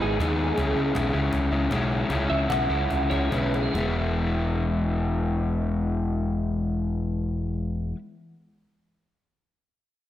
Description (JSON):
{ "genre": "indie rock", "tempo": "137-161 BPM", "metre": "4/4", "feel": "straight", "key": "E major", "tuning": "A4 = 440 Hz", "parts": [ { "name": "electric guitar through a small old amp", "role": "melody", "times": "0.0-3.8 s", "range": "G#4 to F#5", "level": "-29 LUFS", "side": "right 2 dB", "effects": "analog chorus, slapback echo" }, { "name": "crunchy overdriven guitar", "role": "riff", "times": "0.0-8.0 s", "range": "G#2 to E4", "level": "-26 LUFS", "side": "left 3 dB", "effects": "none" }, { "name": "growling picked electric bass", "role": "bass", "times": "0.0-7.9 s", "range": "E1 to D#2", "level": "-27 LUFS", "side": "equal", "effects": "overdrive" }, { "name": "cajon", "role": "drums", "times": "0.0-3.9 s", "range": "none", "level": "-36 LUFS", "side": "right 1 dB", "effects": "none" } ], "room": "moderate recital hall reverb, RT60 1.4 s, digital ambience", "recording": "big arena sound", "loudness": "-23 LUFS", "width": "side -12 dB against mid", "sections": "0.0-3.8 A section; 3.8-7.3 B section", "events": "clean electric guitar solo 0.0-3.8; slowing down 0.6-3.8; drum fill 2.9-3.8", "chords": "0.0 G#m; 0.6 C#m; 3.8 E" }